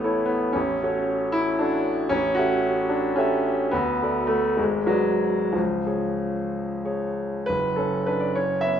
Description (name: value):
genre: classical, romantic character piece for solo piano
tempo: 60-78 BPM (dotted quarters)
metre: 6/8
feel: rubato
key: F# minor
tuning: A4 = 438 Hz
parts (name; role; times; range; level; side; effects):
- bright concert grand piano; solo; 0.0-8.8 s; F#1 to E5; -21 LUFS; equal; none
room: moderate recital hall reverb, RT60 1.8 s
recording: minimal, uncompressed stereo recording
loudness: -21 LUFS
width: side -9 dB against mid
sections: 0.0-7.5 A section; 7.5-8.8 B section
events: none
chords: 0.0 A; 0.6 F#m/A; 2.1 A7; 3.7 D; 4.6 G#m7b5; 5.6 C#; 7.5 F#5